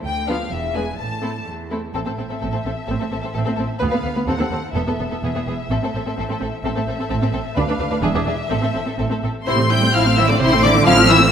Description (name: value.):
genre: quick classical-period movement for string orchestra.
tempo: 128 BPM.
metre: 2/4.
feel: straight.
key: A minor.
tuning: A4 = 441 Hz.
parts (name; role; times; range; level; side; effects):
rich studio violin section; melody; 0.0-11.3 s; E5 to G6; -23 LUFS; left 4 dB; none.
rich studio cello section; bass; 0.0-11.3 s; D2 to G3; -24 LUFS; right 3 dB; none.
warm studio double bass section; bass; 0.0-11.3 s; E1 to D#2; -24 LUFS; right 2 dB; none.
rich studio violin section; second line; 0.3-11.2 s; D4 to G5; -26 LUFS; left 3 dB; none.
rich studio viola section; accompaniment; 0.3-11.3 s; F3 to E4; -22 LUFS; right 1 dB; none.
room: moderate scoring stage reverb, RT60 1.9 s.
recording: none.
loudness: -17 LUFS.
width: side -8 dB against mid.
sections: 0.0-1.9 A section; 1.9-9.5 B section; 9.5-11.3 B section.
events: none.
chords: 0.1 Bdim/D; 0.5 E; 1.0 Am; 3.8 Bdim/D; 4.3 D#dim7; 4.8 Esus4; 5.7 Am; 7.6 Bdim/D; 8.0 E7; 8.5 Am.